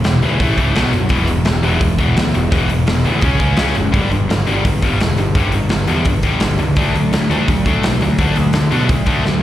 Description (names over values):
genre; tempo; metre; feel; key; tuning
punk rock; 170 BPM; 4/4; straight; unclear; A4 = 441 Hz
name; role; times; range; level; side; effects
distorted electric guitar; riff; 0.0-9.4 s; G2 to C#4; -23 LUFS; right 8 dB; distortion, slapback echo
tight distorted guitar; riff; 0.0-9.4 s; E2 to D4; -19 LUFS; left 6 dB; distortion
fuzz picked electric bass; bass; 0.0-9.4 s; E1 to B2; -17 LUFS; equal; overdrive
big rock drum kit; drums; 0.0-9.3 s; hi-hat, kick drum, snare drum; -18 LUFS; equal; none
room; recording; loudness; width
little or no reverb; live gig heard through the venue's PA, recital hall reverb; -13 LUFS; side -13 dB against mid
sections
0.0-9.4 A section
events
drum fill 9.2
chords
0.4 A5; 0.8 B5; 1.1 E; 3.2 C#5; 3.9 G5; 6.8 D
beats
0.05 0.40 0.76 | 1.11 1.46 1.82 2.17 | 2.52 2.88 3.23 3.58 | 3.94 4.29 4.65 5.00 | 5.35 5.71 6.06 6.41 | 6.77 7.12 7.47 7.83 | 8.18 8.53 8.88 9.24